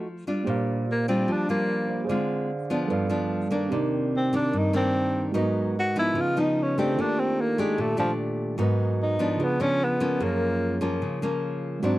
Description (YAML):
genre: bossa nova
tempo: 148 BPM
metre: 4/4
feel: straight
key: unclear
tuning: A4 = 440 Hz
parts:
  - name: breathy tenor saxophone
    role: melody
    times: 0.0-10.8 s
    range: F3 to Gb4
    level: -26 LUFS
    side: equal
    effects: none
  - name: nylon-string guitar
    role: accompaniment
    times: 0.0-12.0 s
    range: Gb2 to G4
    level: -26 LUFS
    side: left 1 dB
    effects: none
  - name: bright tine electric piano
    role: accompaniment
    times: 0.4-12.0 s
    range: Db3 to F5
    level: -30 LUFS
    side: right 4 dB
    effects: none
room: light reverb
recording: dry, close 1970s-style studio recording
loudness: -23 LUFS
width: side -16 dB against mid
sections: 0.5-12.0 A section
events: tenor saxophone solo 0.5-12.0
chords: 0.5 Bb6; 2.1 Dm7b5; 2.9 G7; 3.7 Cm9; 5.3 Abm7; 6.2 Db9; 7.0 Ebmaj9#11; 8.6 Abm7; 9.4 Db7b9; 10.2 Gbmaj7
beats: 0.06 | 0.47 0.87 1.28 1.69 | 2.09 2.50 2.90 3.31 | 3.72 4.12 4.53 4.94 | 5.34 5.75 6.16 6.56 | 6.97 7.37 7.78 8.19 | 8.59 9.00 9.40 9.81 | 10.21 10.62 11.03 11.43 | 11.84